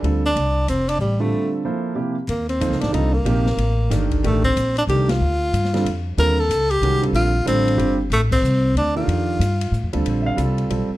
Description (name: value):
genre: modal jazz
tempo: 186 BPM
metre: 3/4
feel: swing 62% on 8ths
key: Eb lydian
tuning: A4 = 441 Hz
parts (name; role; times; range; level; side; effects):
- clear upright piano; accompaniment; 0.0-10.9 s; C3 to F5; -24 LUFS; right 3 dB; none
- upright bass; bass; 0.0-10.9 s; F1 to A2; -21 LUFS; equal; none
- open jazz drum kit; drums; 0.0-10.8 s; crash cymbal, hi-hat, kick drum, ride cymbal, snare drum; -31 LUFS; left 2 dB; none
- warm tenor saxophone; melody; 0.3-9.9 s; G3 to Bb4; -21 LUFS; equal; none
room: light reverb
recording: dark, warm production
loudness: -17 LUFS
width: side -16 dB against mid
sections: 0.0-2.3 A section; 2.3-10.1 B section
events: break 1.3-2.3; band accent 5.0, 8.3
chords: 0.4 F; 2.3 Eb69; 4.2 Dm; 6.2 Eb69; 8.1 Dm; 10.1 Bbmaj9